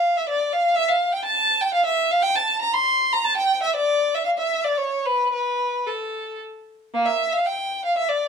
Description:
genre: classical, baroque-style suite movement for unaccompanied violin.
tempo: 109-125 BPM.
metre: 3/4.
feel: rubato.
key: D minor.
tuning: A4 = 439 Hz.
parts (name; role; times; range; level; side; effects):
clear violin; solo; 0.0-8.3 s; Bb3 to C6; -19 LUFS; equal; none.
room: moderate stone room reverb, RT60 0.9 s.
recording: dark, warm production.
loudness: -19 LUFS.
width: side -6 dB against mid.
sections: 0.0-6.9 A section; 6.9-8.3 B section.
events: none.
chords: none.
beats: 0.28 | 0.77 1.25 1.74 | 2.24 2.73 3.25 | 3.76 4.25 4.77 | 5.31 5.86 6.40 | 6.94 7.46 7.97.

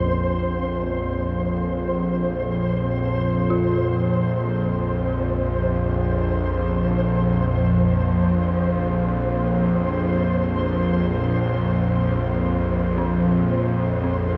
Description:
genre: dark ambient drone.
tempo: free time.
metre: none.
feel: none.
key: unclear.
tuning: A4 = 442 Hz.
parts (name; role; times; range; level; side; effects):
dark detuned synth bell; arpeggios; 0.0-14.4 s; C4 to F4; -35 LUFS; equal; chorus, diffuse ambient delay.
bowed-like drone; drone; 0.0-14.4 s; Bb1 to F2; -23 LUFS; equal; built-in reverb.
flickering grainy texture; texture; 0.0-14.4 s; C5; -30 LUFS; equal; built-in reverb.
room: wet huge ambient reverb, RT60 7.7 s.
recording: none.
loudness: -22 LUFS.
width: mono.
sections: 0.0-14.4 A section.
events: none.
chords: 0.0 Bbmadd9; 9.3 Bbsus2.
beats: free time.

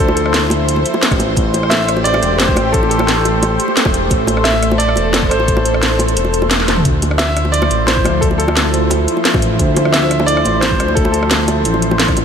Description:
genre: liquid drum and bass.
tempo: 175 BPM.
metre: 4/4.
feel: straight.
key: unclear.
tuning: A4 = 442 Hz.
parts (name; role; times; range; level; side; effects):
clear grand piano; melody; 0.0-12.1 s; A4 to E5; -19 LUFS; equal; ping-pong delay.
lush unison pad; sustained chords; 0.0-12.2 s; F3 to C5; -18 LUFS; equal; chorus, phaser.
smooth synth bass; bass; 0.0-12.2 s; E1 to D2; -18 LUFS; equal; none.
garage drum kit; drums; 0.0-12.2 s; hi-hat, rim click, snare drum, toms; -18 LUFS; equal; small room ambience.
bongos; percussion; 0.1-12.2 s; none; -24 LUFS; equal; none.
electronic kick drum; drums; 1.1-12.1 s; none; -18 LUFS; equal; small room ambience.
room: moderate church reverb, RT60 3.5 s.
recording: dreamy mix soaked in reverb.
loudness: -12 LUFS.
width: side -7 dB against mid.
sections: 0.0-12.2 A section.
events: kick drops out 6.2-6.9; drum fill 6.6.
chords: 0.0 Dm9; 1.4 Am7; 6.9 Dm9.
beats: 0.34 0.68 1.02 | 1.37 1.71 2.05 2.40 | 2.74 3.08 3.42 3.77 | 4.11 4.45 4.79 5.14 | 5.48 5.82 6.17 6.51 | 6.85 7.20 7.54 7.88 | 8.22 8.57 8.91 9.25 | 9.60 9.94 10.28 10.62 | 10.97 11.31 11.65 11.99.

